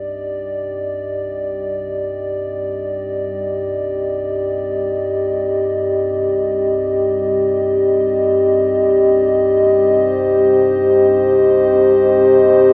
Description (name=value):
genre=dark ambient drone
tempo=free time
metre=none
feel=none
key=C minor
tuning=A4 = 440 Hz
part: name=dark analog pad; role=sustained chords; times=0.0-12.7 s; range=C4 to Eb5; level=-13 LUFS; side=equal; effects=chorus
part: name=deep rumbling drone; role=drone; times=0.0-12.7 s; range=C2 to G2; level=-32 LUFS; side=equal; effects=built-in reverb, phaser, wide subtle chorus
room=wet plate reverb, RT60 2.5 s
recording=cassette tape, AM radio sound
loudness=-13 LUFS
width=side -25 dB against mid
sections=0.0-12.7 A section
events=fade-in on analog synth pad 0.0-12.7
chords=0.0 Cmadd9